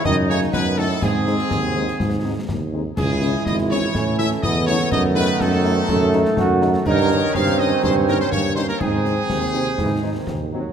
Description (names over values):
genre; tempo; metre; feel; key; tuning
military-style march for wind band; 123 BPM; 2/4; straight; unclear; A4 = 439 Hz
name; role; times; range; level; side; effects
bright trumpet section; melody; 0.0-10.5 s; G#4 to E#5; -25 LUFS; left 1 dB; none
warm euphonium; second line; 0.0-10.5 s; G#2 to F#4; -24 LUFS; right 4 dB; none
warm woodwind section; second line; 0.0-10.5 s; D#4 to D#5; -29 LUFS; left 2 dB; none
clear trombone section; sustained chords; 0.0-10.7 s; B#2 to D#4; -28 LUFS; right 3 dB; none
mellow tuba; bass; 0.1-10.7 s; G#1 to A2; -21 LUFS; right 1 dB; none
concert snare drum, concert bass drum and clash cymbals; drums; 0.1-10.4 s; none; -27 LUFS; left 2 dB; none
mellow French horn section; accompaniment; 0.3-10.6 s; G#3 to E4; -30 LUFS; left 7 dB; none
room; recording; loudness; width
moderate scoring stage reverb, RT60 2.1 s; none; -17 LUFS; side -8 dB against mid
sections
0.0-3.0 A section; 3.0-10.7 B section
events
none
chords
0.0 D#dim/F#; 1.0 G#; 3.0 C#m; 3.9 A; 4.9 D#dim/F#; 6.9 D#7/G; 8.8 G#